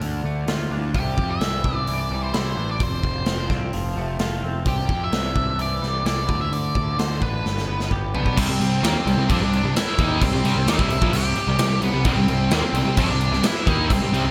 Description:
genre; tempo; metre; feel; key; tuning
quiet-loud alternative rock; 129 BPM; 4/4; straight; C major; A4 = 441 Hz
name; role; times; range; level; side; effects
twangy electric guitar; arpeggios; 0.0-8.4 s; F2 to G4; -34 LUFS; equal; analog chorus, slapback echo
fuzz picked electric bass; bass; 0.0-14.3 s; F1 to F2; -27 LUFS; equal; overdrive
big rock drum kit; drums; 0.0-14.2 s; crash cymbal, hi-hat, kick drum, snare drum, toms; -27 LUFS; equal; none
octave-fuzz lead guitar; melody; 0.9-14.3 s; B3 to G5; -29 LUFS; equal; distortion, slapback echo
biting overdriven guitar; riff; 8.4-14.3 s; Bb2 to Eb4; -29 LUFS; equal; none
distorted electric guitar; riff; 8.4-14.3 s; Bb2 to Eb4; -30 LUFS; equal; none
heavy high-gain guitar; riff; 8.4-14.3 s; Bb2 to Eb4; -32 LUFS; equal; none
room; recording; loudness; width
moderate lush hall reverb, RT60 1.8 s, studio reverb; big arena sound; -22 LUFS; mono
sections
0.0-8.4 A section; 8.4-14.3 B section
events
drum fill 7.5-8.4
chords
0.0 Dm; 0.9 Cadd9; 2.8 F; 4.7 Cadd9; 6.3 D5; 7.5 G; 8.4 C

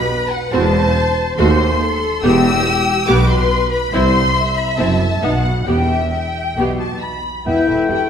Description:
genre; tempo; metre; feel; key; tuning
quick classical-period movement for symphony orchestra; 138 BPM; 4/4; uneven beats, rubato; E minor; A4 = 436 Hz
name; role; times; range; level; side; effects
rich studio violin section; melody; 0.0-8.1 s; E5 to E6; -22 LUFS; left 2 dB; none
rich studio violin section; second line; 0.0-8.1 s; G4 to B5; -20 LUFS; left 3 dB; none
rich studio cello section; bass; 0.0-8.0 s; C2 to B2; -21 LUFS; right 2 dB; none
rich studio double bass section; bass; 0.0-8.0 s; E1 to D#2; -20 LUFS; right 1 dB; none
rich studio viola section; accompaniment; 0.5-8.1 s; A3 to B4; -20 LUFS; right 1 dB; none
clear oboe; second line; 7.5-8.1 s; G5; -24 LUFS; left 2 dB; none
dark clarinet; second line; 7.5-8.1 s; E5 to G5; -27 LUFS; left 2 dB; none
silver concert flute; second line; 7.5-8.1 s; E5 to G5; -25 LUFS; left 3 dB; none
mellow bassoon; accompaniment; 7.5-8.1 s; A3 to B3; -24 LUFS; right 1 dB; none
dark French horn section; sustained chords; 7.5-8.0 s; E4 to G4; -17 LUFS; left 5 dB; none
room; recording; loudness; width
moderate scoring stage reverb, RT60 1.7 s; none; -14 LUFS; side -8 dB against mid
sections
0.0-7.5 A section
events
none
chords
0.0 N.C.; 0.5 F#m7b5/E; 1.4 D#dim7; 2.2 Em; 3.9 C; 4.8 F#m7b5; 5.2 B7; 5.7 Em

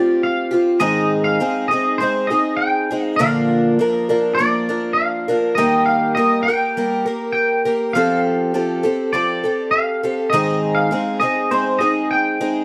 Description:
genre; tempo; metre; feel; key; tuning
rock; 101 BPM; 4/4; straight; unclear; A4 = 440 Hz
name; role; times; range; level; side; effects
twangy electric guitar; melody; 0.0-12.6 s; C5 to G5; -22 LUFS; equal; analog chorus
picked twelve-string acoustic guitar; accompaniment; 0.0-12.6 s; Ab2 to Bb4; -20 LUFS; equal; none
room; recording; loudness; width
studio reverb; dry, close 1970s-style studio recording; -18 LUFS; mono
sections
0.0-12.6 A section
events
none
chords
0.0 Fsus2; 0.8 Ab; 3.2 Bb; 5.6 Eb; 7.9 Fadd9; 10.3 Ab

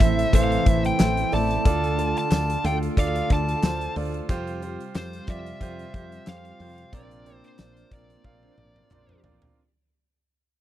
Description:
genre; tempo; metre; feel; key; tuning
1980s-style pop; 91 BPM; 4/4; swing 55% on 16ths; unclear; A4 = 438 Hz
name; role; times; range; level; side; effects
fuzz lead guitar; melody; 0.0-9.2 s; C5 to A5; -28 LUFS; left 1 dB; distortion, tape echo
warm concert grand piano; accompaniment; 0.0-9.6 s; A2 to F5; -30 LUFS; right 4 dB; none
ensemble organ-string; sustained chords; 0.0-9.5 s; C3 to F4; -32 LUFS; equal; ensemble chorus
woody fretless electric bass; bass; 0.0-9.5 s; A1 to F2; -28 LUFS; equal; none
huge arena drum kit; drums; 0.0-9.6 s; hi-hat, kick drum, snare drum, tambourine, toms; -22 LUFS; equal; none
group handclap; percussion; 0.0-9.1 s; none; -40 LUFS; left 5 dB; none
mellow synth brass; stabs; 8.4-9.4 s; F3 to C5; -65 LUFS; equal; chorus
room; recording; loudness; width
little or no reverb; dry, close 1970s-style studio recording; -21 LUFS; side -12 dB against mid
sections
0.0-9.6 A section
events
fade-out 0.0-9.6; band accent 6.9-9.6; drum fill 8.2-9.6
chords
0.0 Am; 1.7 Dm; 4.3 Fsus2; 6.9 Bbadd9

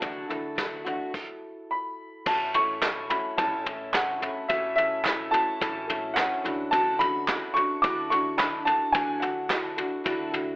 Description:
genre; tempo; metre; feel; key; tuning
indie folk with a building arrangement; 108 BPM; 4/4; straight; A major; A4 = 440 Hz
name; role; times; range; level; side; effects
warm upright piano; melody; 0.0-10.0 s; E5 to D6; -26 LUFS; equal; none
fingerpicked acoustic archtop guitar; accompaniment; 0.0-3.4 s; D3 to A4; -40 LUFS; equal; none
picked steel-string acoustic guitar; accompaniment; 0.0-10.6 s; A2 to A4; -33 LUFS; left 1 dB; none
concert harp; arpeggios; 0.0-10.6 s; C#4 to G#4; -36 LUFS; right 1 dB; none
upright bass; bass; 0.0-10.6 s; A1 to D2; -48 LUFS; equal; none
soft brush drum kit; drums; 0.0-10.5 s; crash cymbal, kick drum, snare drum, toms; -30 LUFS; equal; none
group handclap; percussion; 2.8-9.6 s; none; -31 LUFS; right 2 dB; none
room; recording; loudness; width
moderate large studio reverb, RT60 1.2 s; telephone sound; -24 LUFS; side -21 dB against mid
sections
0.0-2.3 A section; 2.3-10.6 B section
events
stop 1.1-2.3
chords
0.0 D; 2.3 A; 6.4 D

